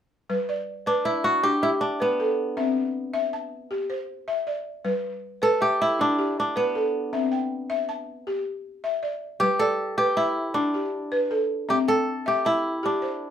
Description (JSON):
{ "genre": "west african traditional", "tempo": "105 BPM (dotted quarters)", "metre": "12/8", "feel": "straight", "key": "G major", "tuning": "A4 = 440 Hz", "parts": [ { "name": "balafon", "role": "arpeggios", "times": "0.3-13.3 s", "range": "G3 to A5", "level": "-26 LUFS", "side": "left 1 dB", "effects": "none" }, { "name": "kora", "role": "melody", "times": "0.9-13.3 s", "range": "B3 to A4", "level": "-24 LUFS", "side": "right 1 dB", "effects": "none" } ], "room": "wet small room reverb, RT60 0.5 s", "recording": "band playing live in one room", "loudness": "-23 LUFS", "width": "side -9 dB against mid", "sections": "0.3-13.3 A section", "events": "none", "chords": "0.3 G; 2.6 C; 4.8 G; 7.1 C; 9.4 G; 11.7 C" }